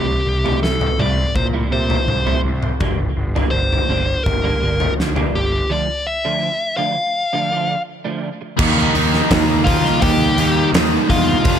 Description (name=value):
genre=quiet-loud alternative rock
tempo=83 BPM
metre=4/4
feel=straight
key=unclear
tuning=A4 = 440 Hz
part: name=dark smooth lead guitar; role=melody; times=0.0-11.6 s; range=F4 to G5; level=-20 LUFS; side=left 1 dB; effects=overdrive
part: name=electric guitar at the edge of break-up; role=arpeggios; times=0.0-8.4 s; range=C3 to E4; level=-26 LUFS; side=right 5 dB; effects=ensemble chorus, digital delay
part: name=fuzz picked electric bass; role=bass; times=0.0-11.6 s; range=F1 to Bb2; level=-22 LUFS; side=equal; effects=overdrive
part: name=big rock drum kit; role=drums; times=0.5-11.6 s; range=crash cymbal, hi-hat, kick drum, snare drum, toms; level=-19 LUFS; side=equal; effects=none
part: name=distorted electric guitar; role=riff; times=8.6-11.6 s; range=F2 to Eb4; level=-19 LUFS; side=right 1 dB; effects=distortion
part: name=sludgy distorted guitar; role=riff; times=8.6-11.6 s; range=F2 to Eb4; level=-21 LUFS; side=left 1 dB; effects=overdrive
room=light reverb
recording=none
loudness=-15 LUFS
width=side -8 dB against mid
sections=0.0-8.6 A section; 8.6-11.6 B section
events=break 5.7-8.6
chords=0.0 C6; 2.8 Gm; 5.7 Dm; 8.6 Eb